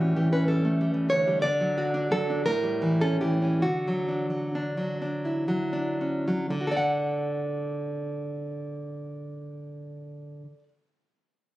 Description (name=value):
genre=romantic piece for solo classical guitar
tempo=37-64 BPM (dotted quarters)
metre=6/8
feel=rubato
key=D major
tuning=A4 = 439 Hz
part: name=nylon-string guitar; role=solo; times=0.0-10.7 s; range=A2 to F#5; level=-25 LUFS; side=equal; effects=none
room=light reverb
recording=recorded on a phone in the room, club ambience, compression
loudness=-24 LUFS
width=side -16 dB against mid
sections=0.0-6.5 A section; 6.5-11.6 B section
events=slowing down 0.5-6.5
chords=0.0 A7; 1.4 D; 2.5 A7b9; 3.7 D